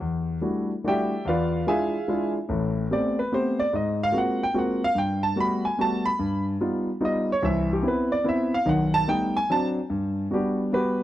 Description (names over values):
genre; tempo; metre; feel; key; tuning
jazz; 146 BPM; 3/4; swing 65% on 8ths; unclear; A4 = 440 Hz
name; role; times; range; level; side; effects
warm grand piano; solo; 0.0-11.0 s; A1 to B5; -22 LUFS; equal; none
room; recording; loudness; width
small room ambience; dry, close 1970s-style studio recording; -22 LUFS; side -13 dB against mid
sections
0.0-9.9 A section; 9.9-11.0 A section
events
grand piano solo 0.0-9.9, 9.9-11.0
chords
0.0 Em11; 1.2 E7b9; 2.5 Am9; 3.7 G#13; 5.0 Gmaj9; 6.2 Gaug7; 7.4 Cmaj7; 8.7 B7b13; 9.5 D7; 9.9 Gmaj7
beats
| 0.01 0.42 0.84 | 1.25 1.66 2.07 | 2.49 2.90 3.31 | 3.72 4.13 4.55 | 4.96 5.37 5.78 | 6.19 6.60 7.01 | 7.42 7.84 8.25 | 8.66 9.07 9.48 | 9.89 10.30 10.72